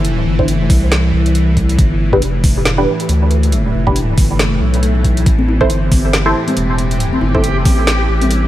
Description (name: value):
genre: deep dubstep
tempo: 138 BPM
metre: 4/4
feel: swing 58% on 16ths, half-time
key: A minor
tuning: A4 = 440 Hz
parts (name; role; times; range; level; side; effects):
- bowed-like drone; sustained chords; 0.0-8.5 s; A2 to E3; -20 LUFS; equal; built-in reverb, phaser
- saturated sub bass; bass; 0.0-8.5 s; E1 to D2; -15 LUFS; equal; tube saturation
- garage drum kit; drums; 0.0-8.4 s; hi-hat, snare drum; -20 LUFS; equal; overdrive
- filtered dub chord stab; stabs; 0.4-7.4 s; D4 to C5; -20 LUFS; right 1 dB; phaser, cassette tape, dub echo
- electronic kick drum; drums; 0.4-7.8 s; none; -14 LUFS; equal; overdrive
- swell; sound effects; 4.6-5.3 s; none; -25 LUFS; left 1 dB; none
- backwards swelling texture; texture; 6.0-8.5 s; G4; -23 LUFS; right 1 dB; built-in reverb
- congas and bongos; percussion; 5.4-8.3 s; none; -20 LUFS; left 2 dB; dub echo
room: light reverb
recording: vinyl crackle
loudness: -11 LUFS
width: side -14 dB against mid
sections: 0.0-8.5 A section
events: swell 4.6-5.3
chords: 0.0 C; 1.8 G; 5.3 Am